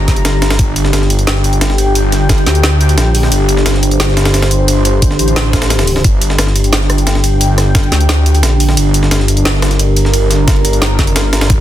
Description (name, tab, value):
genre	dark technical drum and bass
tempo	176 BPM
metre	4/4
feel	straight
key	G minor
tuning	A4 = 439 Hz
part	sweeping resonant pad	sustained chords	0.0-11.6 s	D3 to Bb5	-16 LUFS	equal	chorus, sidechain pumping
part	wide detuned saw bass	bass	0.0-11.6 s	G1 to D2	-12 LUFS	equal	chorus, tube saturation
part	breakbeat sampler-style drum kit	drums	0.1-11.6 s	hi-hat, ride cymbal, snare drum	-19 LUFS	equal	high-pass filter on cymbals, studio reverb, high-pass filter on snare, high-pass filter on hats
part	drum and bass drum kit	drums	0.1-11.6 s	hi-hat, rim click, snare drum	-17 LUFS	equal	overdrive, studio reverb
part	electronic kick drum	drums	0.1-2.4, 5.0-7.8, 10.5-11.6 s	none	-12 LUFS	equal	overdrive, studio reverb
room	light reverb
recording	dense, heavily limited modern master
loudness	-9 LUFS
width	side -12 dB against mid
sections	0.0-11.6 A section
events	none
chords	0.0 G5